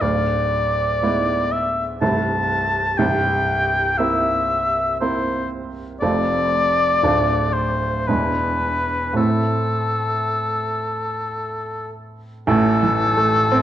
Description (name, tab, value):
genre	classical, romantic duo for oboe and grand piano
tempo	54-62 BPM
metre	3/4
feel	rubato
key	A minor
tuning	A4 = 440 Hz
part	clear oboe	melody	0.0-13.6 s	A4 to A5	-20 LUFS	left 2 dB	none
part	clear baby grand piano	accompaniment	0.0-13.6 s	C1 to F4	-21 LUFS	right 2 dB	none
room	wet recital hall reverb, RT60 1.4 s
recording	worn, warbling old tape, cassette tape, warbly pitch drift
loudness	-18 LUFS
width	side -11 dB against mid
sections	0.0-12.5 A section; 12.5-13.6 B section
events	none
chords	0.0 E7/D; 2.0 Am/C; 3.0 C7; 6.0 F; 7.0 Dm; 8.1 E7; 9.2 Am; 12.5 A5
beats	| 0.02 1.02 2.01 | 2.99 4.00 5.01 | 6.02 7.03 8.08 | 9.17 10.28 11.39 | 12.48 13.50